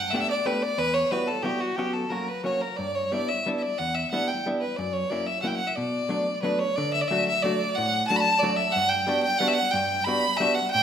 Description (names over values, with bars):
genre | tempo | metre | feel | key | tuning
musette waltz | 181 BPM | 3/4 | rubato | B minor, D major from 6.8 s | A4 = 438 Hz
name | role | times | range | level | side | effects
clear violin | melody | 0.0-10.8 s | F#4 to B5 | -24 LUFS | equal | none
hollow-body jazz guitar | accompaniment | 0.0-10.8 s | E2 to G4 | -28 LUFS | left 1 dB | none
room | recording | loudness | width
wet recital hall reverb, RT60 1.6 s | minimal, uncompressed stereo recording | -23 LUFS | side -8 dB against mid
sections
0.0-6.8 A section; 6.8-10.8 B section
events
none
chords
0.0 Gadd9; 0.8 Emadd9; 1.8 F#sus4; 2.1 F#; 2.8 G6; 3.8 Em7; 4.8 F#7; 5.8 Bm7; 6.8 D; 8.8 Gmaj7